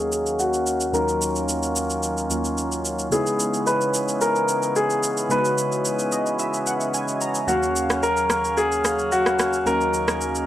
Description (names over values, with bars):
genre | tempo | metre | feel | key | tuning
amapiano | 110 BPM | 4/4 | straight | Eb minor | A4 = 441 Hz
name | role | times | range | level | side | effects
clear concert grand piano | melody | 0.0-10.5 s | Gb4 to Cb5 | -23 LUFS | left 1 dB | low-pass filter, tape echo
warm analog keys | accompaniment | 0.0-10.5 s | Eb2 to Bb5 | -28 LUFS | right 1 dB | chorus, low-pass filter
mellow accordion | sustained chords | 0.0-10.5 s | Db3 to F5 | -27 LUFS | equal | low-pass filter
electronic shaker and rim click | drums | 0.1-10.5 s | none | -27 LUFS | right 1 dB | overdrive
room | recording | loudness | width
light reverb, studio ambience | dry, gritty hardware recording | -20 LUFS | side -13 dB against mid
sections
0.0-10.5 A section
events
filter sweep 0.0-10.5; synth keys fill 5.8-7.5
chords
0.0 Ebm9; 3.1 Dbm9; 7.5 Ebm9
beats
0.39 | 0.94 1.49 2.03 2.58 | 3.12 3.67 4.21 4.76 | 5.30 5.85 6.39 6.94 | 7.49 8.03 8.58 9.12 | 9.67 10.21